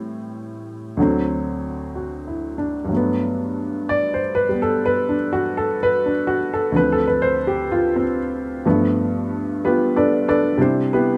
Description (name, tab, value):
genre	solo jazz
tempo	62 BPM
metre	4/4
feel	swing 66% on 8ths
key	G major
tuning	A4 = 441 Hz
part	warm upright piano	solo	0.0-11.2 s	D2 to D5	-21 LUFS	equal	none
room	light reverb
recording	close, detailed microphones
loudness	-20 LUFS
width	mono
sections	0.0-2.9 A section; 2.9-11.2 B section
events	upright piano solo 2.9-11.2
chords	0.0 Am7; 1.0 D7; 2.9 Gmaj9; 6.7 Dm7; 8.7 G9; 10.6 Cmaj9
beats	0.01 0.97 1.94 | 2.90 3.86 4.82 5.78 | 6.74 7.70 8.65 9.61 | 10.57